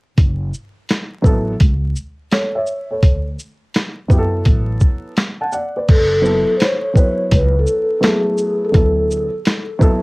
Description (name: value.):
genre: hip hop, jazz-hop.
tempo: 84 BPM.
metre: 4/4.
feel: swing 66% on 16ths.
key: F# minor.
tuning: A4 = 439 Hz.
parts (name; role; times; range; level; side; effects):
upright bass; bass; 0.2-9.3 s; F#1 to F#2; -19 LUFS; equal; none.
boom bap sampler-style drum kit; drums; 0.2-10.0 s; crash cymbal, hi-hat, kick drum, shaker, snare drum; -14 LUFS; equal; none.
dark upright piano; accompaniment; 1.2-10.0 s; F#3 to A5; -20 LUFS; right 1 dB; none.
vibraphone with soft mallets; melody; 5.9-9.3 s; G#4 to C#5; -17 LUFS; left 1 dB; analog delay.
room: light reverb.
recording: home recording on cassette, vinyl crackle.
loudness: -14 LUFS.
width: side -25 dB against mid.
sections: 0.2-5.9 A section; 5.9-10.0 B section.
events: none.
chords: 0.2 F#m7; 3.0 D; 5.9 F#m7; 8.7 D.